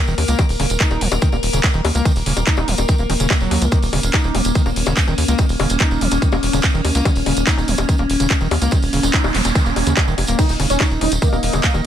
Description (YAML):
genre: psychedelic trance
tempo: 144 BPM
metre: 4/4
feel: straight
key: unclear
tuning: A4 = 444 Hz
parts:
  - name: evolving wavetable pad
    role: sustained chords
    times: 0.0-11.9 s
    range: Bb3 to Eb5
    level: -23 LUFS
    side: left 1 dB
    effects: phaser, built-in reverb, sidechain pumping
  - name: overdriven acid bass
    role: riff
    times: 0.1-11.8 s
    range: Db3 to Eb4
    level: -25 LUFS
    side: equal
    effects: distortion, auto-pan, sidechain pumping, digital delay
  - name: tight sequencer bass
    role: bass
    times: 0.1-11.8 s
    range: Eb1 to Eb2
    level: -20 LUFS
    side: equal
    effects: none
  - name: tambourine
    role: percussion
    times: 0.1-11.8 s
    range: none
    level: -29 LUFS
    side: right 4 dB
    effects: none
  - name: drum and bass drum kit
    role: drums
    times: 0.2-11.8 s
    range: bongos, crash cymbal, handclaps, hi-hat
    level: -22 LUFS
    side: left 2 dB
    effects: none
  - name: electronic kick drum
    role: drums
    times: 0.4-11.7 s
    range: none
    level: -17 LUFS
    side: equal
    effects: none
  - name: noise sweep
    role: sound effects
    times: 9.0-10.4 s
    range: none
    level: -27 LUFS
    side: right 5 dB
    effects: none
  - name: wide unison lead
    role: melody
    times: 10.4-11.9 s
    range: Bb3 to Eb4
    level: -22 LUFS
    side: right 1 dB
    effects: phaser, sidechain pumping, digital delay
room: digital ambience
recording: none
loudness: -15 LUFS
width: side -10 dB against mid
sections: 0.0-11.9 A section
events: noise sweep 9.0-10.4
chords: 0.0 Eb5